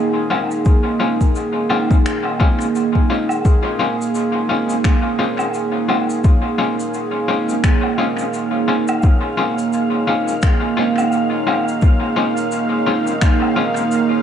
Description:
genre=ambient dub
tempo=86 BPM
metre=4/4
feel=swing 58% on 16ths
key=Bb minor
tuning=A4 = 440 Hz
part: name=warm analog pad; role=sustained chords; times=0.0-14.2 s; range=Bb3 to F5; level=-19 LUFS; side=right 3 dB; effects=chorus
part: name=electric guitar at the edge of break-up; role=stabs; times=0.3-13.8 s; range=Ab3 to F4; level=-22 LUFS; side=left 4 dB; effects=tremolo, dub echo
part: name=woodblock, cabasa and finger snaps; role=drums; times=0.3-14.1 s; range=none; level=-27 LUFS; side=left 1 dB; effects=dub echo
part: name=electronic kick drum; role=drums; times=0.7-13.4 s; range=none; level=-14 LUFS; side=left 1 dB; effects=none
part: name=wind-like tuned noise texture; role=texture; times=4.3-14.2 s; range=F5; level=-29 LUFS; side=right 1 dB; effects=built-in reverb
room=light reverb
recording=dark, warm production, nothing above 10.5 kHz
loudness=-15 LUFS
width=side -9 dB against mid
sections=0.0-3.5 A section; 3.5-14.2 B section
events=none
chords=0.0 Bbm9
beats=| 0.66 1.36 2.05 2.75 | 3.45 4.15 4.84 5.54 | 6.24 6.94 7.64 8.33 | 9.03 9.73 10.43 11.12 | 11.82 12.52 13.22 13.91

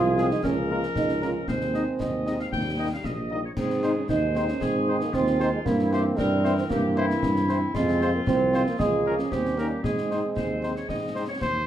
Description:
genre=military-style march for wind band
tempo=115 BPM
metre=2/4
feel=straight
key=Ab major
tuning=A4 = 438 Hz
part: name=mellow euphonium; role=second line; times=0.0-11.4 s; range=G3 to F4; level=-26 LUFS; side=right 4 dB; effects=none
part: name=warm woodwind section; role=second line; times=0.0-11.7 s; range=E4 to G5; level=-31 LUFS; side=left 2 dB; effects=none
part: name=warm trombone section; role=sustained chords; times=0.0-11.7 s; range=Eb3 to Db4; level=-34 LUFS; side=equal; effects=none
part: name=mellow tuba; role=bass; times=0.0-11.7 s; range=Bb1 to Ab2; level=-28 LUFS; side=right 1 dB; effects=none
part: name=clear cornet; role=melody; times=0.2-11.7 s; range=Ab4 to Eb5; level=-34 LUFS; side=left 1 dB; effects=none
part: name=mellow French horn section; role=accompaniment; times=0.2-11.2 s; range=G3 to F4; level=-33 LUFS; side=left 4 dB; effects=none
part: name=concert snare drum, concert bass drum and clash cymbals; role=drums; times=0.2-11.6 s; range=none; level=-32 LUFS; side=left 2 dB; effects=none
room=moderate large studio reverb, RT60 1.0 s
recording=faint mains hum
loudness=-22 LUFS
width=side -11 dB against mid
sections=0.0-11.7 A section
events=none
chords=0.4 Bbm7/Db; 1.5 Ab/Eb; 2.5 Eb; 3.6 Ab; 5.7 C7/G; 7.7 Fm; 8.8 Bbm7/Db; 9.3 Eb7; 9.8 Ab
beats=| 0.44 0.96 | 1.48 2.00 | 2.53 3.05 | 3.57 4.09 | 4.61 5.14 | 5.66 6.18 | 6.70 7.23 | 7.75 8.27 | 8.79 9.32 | 9.84 10.36 | 10.89 11.41

